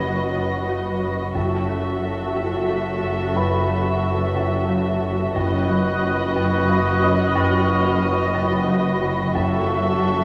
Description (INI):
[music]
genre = cinematic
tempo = 90 BPM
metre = 3/4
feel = straight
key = F# dorian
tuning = A4 = 441 Hz
[part]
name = muted symphonic violin section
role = melody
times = 0.0-10.2 s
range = D#5 to E5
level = -30 LUFS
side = equal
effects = none
[part]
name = muted symphonic violin section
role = second line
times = 0.0-10.2 s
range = A4 to B4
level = -31 LUFS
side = equal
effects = none
[part]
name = muted symphonic viola section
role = accompaniment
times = 0.0-10.2 s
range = F#4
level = -28 LUFS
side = equal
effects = none
[part]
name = folk marimba with medium hard mallets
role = riff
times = 0.0-10.2 s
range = F#2 to F#3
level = -28 LUFS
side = equal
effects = none
[part]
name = muted studio double bass section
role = bass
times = 0.0-10.2 s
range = F#1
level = -30 LUFS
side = equal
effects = none
[part]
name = muted symphonic cello section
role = bass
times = 0.0-10.2 s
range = F#2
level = -29 LUFS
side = equal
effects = none
[part]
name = punchy sub bass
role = drone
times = 0.0-10.2 s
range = F#1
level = -35 LUFS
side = equal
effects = none
[part]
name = felt-muted upright piano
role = texture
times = 0.0-9.4 s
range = B4 to G#6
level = -33 LUFS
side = equal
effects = none
[part]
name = muted studio violin section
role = texture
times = 5.4-9.0 s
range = D#6 to F#6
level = -31 LUFS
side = equal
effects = none
[sound]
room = wet scoring stage reverb, RT60 1.8 s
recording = none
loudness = -21 LUFS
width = mono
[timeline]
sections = 0.0-10.2 A section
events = none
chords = 0.0 B/F#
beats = 0.02 0.69 | 1.36 2.02 2.69 | 3.36 4.02 4.69 | 5.36 6.02 6.69 | 7.36 8.02 8.69 | 9.36 10.02